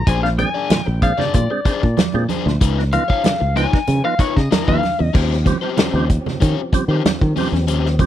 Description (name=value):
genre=funk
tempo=95 BPM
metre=4/4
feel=straight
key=unclear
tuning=A4 = 435 Hz
part: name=lightly driven lead guitar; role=melody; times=0.0-5.1 s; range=Db5 to Ab5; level=-22 LUFS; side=left 3 dB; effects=none
part: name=fingered electric bass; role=bass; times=0.0-8.0 s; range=Bb1 to Eb3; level=-18 LUFS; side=equal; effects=none
part: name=crunchy overdriven guitar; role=accompaniment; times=0.1-8.0 s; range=Db4 to D5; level=-24 LUFS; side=left 9 dB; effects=none
part: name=percussive tonewheel organ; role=stabs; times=0.1-8.1 s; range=Bb2 to Eb4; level=-24 LUFS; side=right 6 dB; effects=chorus vibrato, fast rotary speaker
part: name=vintage drum kit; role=drums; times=0.1-8.1 s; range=crash cymbal, hi-hat, kick drum, snare drum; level=-18 LUFS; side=equal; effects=none
part: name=congas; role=percussion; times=0.4-8.1 s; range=none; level=-26 LUFS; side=right 8 dB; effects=none
part: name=percussive tonewheel organ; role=sustained chords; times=5.1-8.1 s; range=F3 to G4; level=-29 LUFS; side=equal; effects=fast rotary speaker, chorus vibrato
room=studio reverb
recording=dry, close 1970s-style studio recording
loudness=-15 LUFS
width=side -12 dB against mid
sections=0.0-5.1 A section; 5.1-8.1 B section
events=lead electric guitar solo 0.0-5.1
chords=0.0 Bb9; 2.6 Db9; 5.1 Eb13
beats=| 0.07 0.71 1.34 1.98 | 2.61 3.25 3.88 4.51 | 5.15 5.78 6.42 7.05 | 7.68